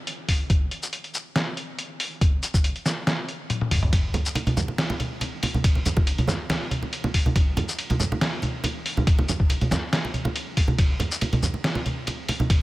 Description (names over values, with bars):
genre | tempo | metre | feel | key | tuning
dubstep | 140 BPM | 4/4 | swing 53% on 16ths, half-time | none | none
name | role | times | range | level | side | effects
trip hop sampler-style drum kit | drums | 0.1-12.6 s | hi-hat, ride cymbal, shaker, snare drum, toms | -27 LUFS | equal | studio reverb
electronic kick drum | drums | 0.3-12.6 s | none | -20 LUFS | equal | studio reverb
congas | percussion | 4.1-12.5 s | none | -26 LUFS | right 1 dB | none
room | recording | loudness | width
digital ambience | none | -22 LUFS | side -18 dB against mid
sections
0.0-12.6 A section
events
drum fill 3.5-3.9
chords
none